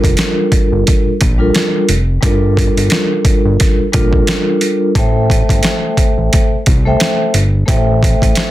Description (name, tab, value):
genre	hip hop, boom-bap hip-hop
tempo	88 BPM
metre	4/4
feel	swing 58% on 16ths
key	G dorian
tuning	A4 = 440 Hz
part	vibraphone with soft mallets	accompaniment	0.0-8.5 s	G3 to G5	-15 LUFS	equal	high-pass filter, low-pass filter, plate reverb
part	fat analog bass	bass	0.0-8.3 s	F1 to C2	-15 LUFS	equal	none
part	boom bap sampler-style drum kit	drums	0.0-8.5 s	hi-hat, kick drum, snare drum	-13 LUFS	equal	overdrive
room	light reverb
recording	dense, heavily limited modern master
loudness	-10 LUFS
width	side -14 dB against mid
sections	0.0-8.5 A section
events	none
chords	0.0 Gm7; 5.0 Am7